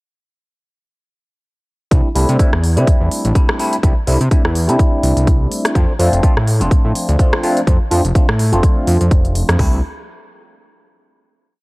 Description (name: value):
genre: filtered disco house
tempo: 125 BPM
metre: 4/4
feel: swing 56% on 16ths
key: C major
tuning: A4 = 440 Hz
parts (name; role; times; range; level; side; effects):
- bright tine electric piano; accompaniment; 1.9-9.8 s; F3 to F4; -19 LUFS; equal; overdrive, phaser, sidechain pumping, low-pass filter
- fat analog bass; bass; 1.9-9.8 s; F1 to C3; -15 LUFS; equal; sidechain pumping, low-pass filter
- house drum kit; drums; 1.9-9.7 s; hi-hat, kick drum, toms; -13 LUFS; equal; none
- house drum kit; drums; 1.9-9.6 s; hi-hat, rim click; -23 LUFS; equal; sidechain pumping on hats
room: digital ambience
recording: dry, gritty hardware recording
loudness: -12 LUFS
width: side -23 dB against mid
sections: 1.9-9.6 groove; 9.6-11.5 final chord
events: filter sweep 1.9-9.6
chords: 1.9 C69; 5.8 F6; 9.6 N.C.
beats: | 1.91 2.39 2.87 3.35 | 3.83 4.31 4.79 5.27 | 5.75 6.23 6.71 7.19 | 7.67 8.15 8.63 9.11 | 9.59